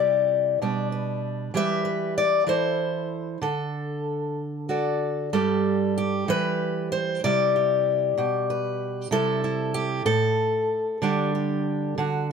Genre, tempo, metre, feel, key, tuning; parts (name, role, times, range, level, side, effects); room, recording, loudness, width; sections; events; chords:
folk, solo fingerstyle acoustic guitar; 63 BPM (dotted quarters); 6/8; straight; A4 = 441 Hz
fingerpicked steel-string acoustic guitar; solo; 0.0-12.3 s; G2 to E5; -22 LUFS; equal
moderate studio reverb, RT60 0.7 s; -22 LUFS; side -6 dB against mid
0.0-12.3 A section
0.0 C; 0.6 G/B; 1.5 Em; 2.5 Am/E; 3.4 D; 5.3 N.C.; 6.3 Em; 7.2 Cadd9; 8.2 G/B; 9.1 C; 10.1 N.C.; 11.0 Dsus4